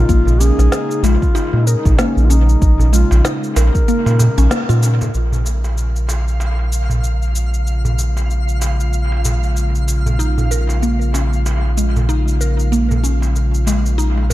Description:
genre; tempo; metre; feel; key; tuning
organic downtempo; 95 BPM; 4/4; swing 58% on 16ths; Bb minor pentatonic; A4 = 440 Hz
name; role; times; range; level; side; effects
dark duduk; melody; 0.0-4.8 s; Db4 to Bb4; -25 LUFS; left 1 dB; dub echo
warm analog pad; sustained chords; 0.0-14.3 s; Db3 to F4; -26 LUFS; left 2 dB; wide subtle chorus, sidechain pumping
round analog bass; bass; 0.0-14.3 s; Bb1 to Bb2; -15 LUFS; equal; sidechain pumping
mallet-like synth pluck; arpeggios; 0.1-4.8, 10.2-14.3 s; Ab3 to Bb4; -22 LUFS; equal; chorus, phaser, dub echo
electronic cabasa and snare drum; drums; 0.1-14.3 s; none; -25 LUFS; equal; studio reverb, dub echo
electronic kick drum; drums; 0.1-3.9 s; none; -15 LUFS; equal; studio reverb
darbuka; percussion; 0.3-14.3 s; none; -26 LUFS; right 2 dB; dub echo
twinkling granular texture; texture; 6.1-14.3 s; F5; -30 LUFS; right 1 dB; built-in reverb
room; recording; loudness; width
little or no reverb; echo-heavy mix; -13 LUFS; side -15 dB against mid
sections
0.0-5.1 A section; 5.1-14.3 B section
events
kick drops out 3.9-5.1; band accent 4.5-4.8; filter sweep on analog synth pad 5.1-14.3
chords
0.0 Bbm7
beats
| 0.09 0.72 1.35 1.99 | 2.62 3.25 3.88 4.51 | 5.14 5.78 6.41 7.04 | 7.67 8.30 8.93 9.56 | 10.20 10.83 11.46 12.09 | 12.72 13.35 13.98

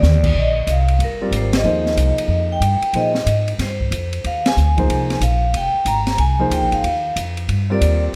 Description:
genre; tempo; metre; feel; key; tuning
modal jazz; 185 BPM; 4/4; swing 64% on 8ths; unclear; A4 = 440 Hz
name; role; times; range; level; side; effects
vibraphone with medium hard mallets; melody; 0.0-8.0 s; Bb4 to Bb5; -23 LUFS; equal; plate reverb
upright bass; bass; 0.0-8.1 s; F1 to Bb2; -21 LUFS; equal; none
open jazz drum kit; drums; 0.0-7.9 s; crash cymbal, hi-hat, kick drum, ride cymbal, snare drum; -27 LUFS; equal; none
warm grand piano; accompaniment; 1.2-8.1 s; F3 to D5; -25 LUFS; equal; none
room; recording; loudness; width
moderate studio reverb, RT60 0.8 s; none; -18 LUFS; mono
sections
0.3-8.2 A section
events
band accent 1.5, 4.4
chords
0.3 Bb13sus4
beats
0.03 | 0.35 0.67 1.00 1.32 | 1.65 1.97 2.29 2.62 | 2.94 3.27 3.59 3.92 | 4.24 4.57 4.89 5.22 | 5.54 5.87 6.19 6.52 | 6.84 7.17 7.49 7.82

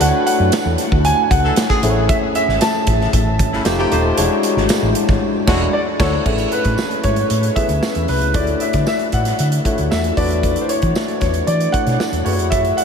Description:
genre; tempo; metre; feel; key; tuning
polished 1980s jazz-funk pop; 115 BPM; 4/4; straight; A major; A4 = 439 Hz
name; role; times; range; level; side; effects
warm concert grand piano; melody; 0.0-12.8 s; B4 to A5; -21 LUFS; equal; lush chorus, ping-pong delay
barky tine electric piano; accompaniment; 0.0-12.8 s; G#3 to C#5; -20 LUFS; left 2 dB; overdrive, wide subtle chorus
hollow-body short-scale fingered electric bass; bass; 0.0-12.7 s; Eb1 to E3; -19 LUFS; equal; none
modern studio drum kit; drums; 0.0-12.8 s; crash cymbal, hi-hat, kick drum, snare drum; -20 LUFS; right 1 dB; none
tambourine; percussion; 0.5-12.1 s; none; -37 LUFS; right 5 dB; none
clear horn section; second line; 1.4-6.1 s; C#3 to A4; -28 LUFS; equal; ping-pong delay
room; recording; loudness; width
wet huge ambient reverb, RT60 7.9 s; dreamy mix soaked in reverb; -14 LUFS; side -6 dB against mid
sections
0.0-6.3 A section; 6.3-12.8 B section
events
band accent 5.2-6.3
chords
0.0 Dmaj9; 1.8 Amaj7; 3.7 F9; 4.2 E13; 5.7 D9; 6.3 Amaj9; 8.3 Dmaj9; 10.2 E13sus4; 12.3 F#m9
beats
| 0.00 0.53 1.05 1.57 | 2.09 2.61 3.13 3.65 | 4.17 4.69 5.21 5.74 | 6.26 6.78 7.30 7.82 | 8.35 8.87 9.39 9.91 | 10.43 10.96 11.48 12.00 | 12.52

